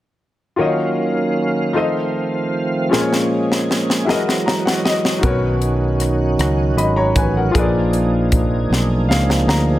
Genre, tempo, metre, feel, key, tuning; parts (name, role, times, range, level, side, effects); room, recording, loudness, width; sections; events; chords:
slow gospel; 52 BPM (dotted quarters); 6/8; straight; Eb minor; A4 = 440 Hz
clear grand piano; accompaniment; 0.6-9.8 s; Bb2 to B5; -21 LUFS; left 3 dB
tonewheel organ; sustained chords; 0.6-9.8 s; Eb3 to F5; -20 LUFS; right 2 dB; slow rotary speaker, overdrive, chorus vibrato
crisp fusion drum kit; drums; 2.9-9.7 s; hi-hat, kick drum, rim click, snare drum; -20 LUFS; equal
fingered electric bass; bass; 5.2-9.8 s; Ab1 to D2; -18 LUFS; equal
light reverb, small room ambience; -15 LUFS; side -14 dB against mid
0.6-9.8 A section
drum fill 2.9-5.2, 8.7-9.8; grand piano fill 4.1-5.2, 8.7-9.8
0.6 Ebm9; 1.7 F7; 2.9 Bbm7; 4.1 Gb13; 5.2 Bmaj9; 7.5 Bb7b9